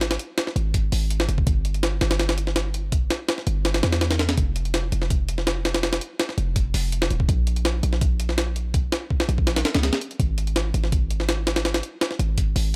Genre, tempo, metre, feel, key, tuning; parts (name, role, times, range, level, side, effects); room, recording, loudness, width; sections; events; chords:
drum and bass, jungle; 165 BPM; 4/4; straight; A4 = 442 Hz
warm 808-style bass; bass; 0.0-12.8 s; Eb1 to E2; -26 LUFS; equal
jungle sampler-style drum kit; drums; 0.0-12.6 s; hi-hat, kick drum, snare drum; -26 LUFS; equal
digital ambience; -23 LUFS; mono
0.0-12.8 A section